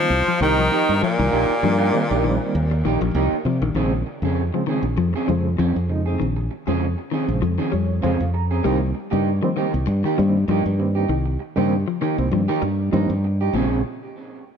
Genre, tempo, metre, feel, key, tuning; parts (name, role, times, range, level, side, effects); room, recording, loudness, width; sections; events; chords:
afrobeat; 98 BPM; 4/4; swing 55% on 16ths; Bb dorian; A4 = 441 Hz
edgy tenor saxophone; melody; 0.0-2.8 s; Bb2 to F3; -23 LUFS; left 3 dB; tape echo
breathy trumpet; second line; 0.0-2.8 s; Bb3 to F4; -28 LUFS; right 4 dB
raspy baritone saxophone; second line; 0.0-2.8 s; Bb2 to F3; -29 LUFS; right 4 dB
reed electric piano; accompaniment; 0.0-13.8 s; Db3 to Bb5; -27 LUFS; right 4 dB; fast tremolo
clean electric guitar; arpeggios; 0.0-13.7 s; Bb2 to G3; -26 LUFS; left 8 dB
fingered electric bass; bass; 0.1-13.8 s; Bb1 to C3; -21 LUFS; equal
electric guitar at the edge of break-up; stabs; 0.3-13.8 s; F3 to Ab4; -25 LUFS; right 4 dB; tape echo
light reverb; -18 LUFS; side -7 dB against mid
0.0-3.8 A section; 3.8-13.5 B section; 13.5-14.6 C section
reed electric piano fill 7.4-8.6
0.0 Cm7; 3.8 Bbm9; 8.6 Cm7; 13.5 Bbm9